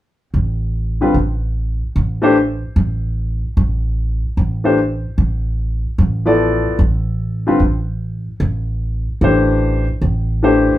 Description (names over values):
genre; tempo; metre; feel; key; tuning
jazz; 149 BPM; 4/4; swing 65% on 8ths; D dorian; A4 = 440 Hz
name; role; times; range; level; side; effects
upright bass; bass; 0.3-10.7 s; A1; -17 LUFS; right 1 dB; none
warm grand piano; accompaniment; 1.0-10.8 s; D3 to D5; -14 LUFS; left 2 dB; none
room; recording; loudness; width
moderate studio reverb, RT60 0.6 s; band playing live in one room; -15 LUFS; side -14 dB against mid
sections
0.0-10.8 A section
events
none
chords
0.0 D7sus2